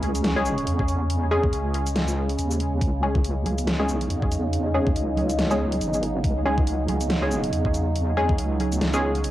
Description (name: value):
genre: deep dubstep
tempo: 140 BPM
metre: 4/4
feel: swing 57% on 16ths, half-time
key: C# minor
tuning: A4 = 440 Hz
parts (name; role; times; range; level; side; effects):
- overtone-sweeping drone; sustained chords; 0.0-9.3 s; C#3 to D#4; -28 LUFS; right 1 dB; chorus, built-in reverb, cassette tape
- deep soft wobble bass; bass; 0.0-9.3 s; G#1 to E2; -26 LUFS; equal; chorus
- dubstep drum kit; drums; 0.0-9.3 s; hi-hat, shaker, snare drum; -29 LUFS; equal; overdrive
- filtered dub chord stab; stabs; 0.4-9.1 s; G#3 to G#4; -27 LUFS; left 1 dB; chorus, cassette tape, dub echo
- electronic kick drum; drums; 0.8-8.4 s; none; -24 LUFS; equal; overdrive
- congas; percussion; 3.5-9.2 s; none; -32 LUFS; right 2 dB; dub echo
room: moderate spring reverb, RT60 1.8 s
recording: home recording on cassette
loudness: -21 LUFS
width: side -14 dB against mid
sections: 0.0-9.3 A section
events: none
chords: 0.0 C#5